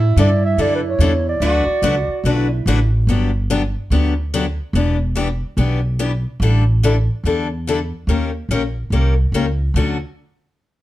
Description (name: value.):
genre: acoustic string swing (jazz manouche).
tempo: 144 BPM.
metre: 4/4.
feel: swing 63% on 8ths.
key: D major.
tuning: A4 = 440 Hz.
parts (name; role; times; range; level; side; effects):
picked steel-string acoustic guitar; second line; 0.0-2.9 s; E4 to F#4; -25 LUFS; right 8 dB; none.
upright bass; bass; 0.0-10.0 s; E1 to A2; -17 LUFS; equal; none.
breathy clarinet; melody; 0.2-2.6 s; B4 to E5; -20 LUFS; right 1 dB; plate reverb.
picked steel-string acoustic guitar; accompaniment; 0.2-10.0 s; D3 to B4; -20 LUFS; left 4 dB; none.
room: light reverb.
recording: dark, warm production.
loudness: -16 LUFS.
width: side -15 dB against mid.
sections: 0.0-3.1 A section; 3.1-9.7 B section; 9.7-10.8 C section.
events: none.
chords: 0.0 A7sus4; 1.4 D6; 3.1 Gmaj7; 4.7 Em7; 6.4 A7sus4; 8.1 Eb6; 9.7 Dmaj7.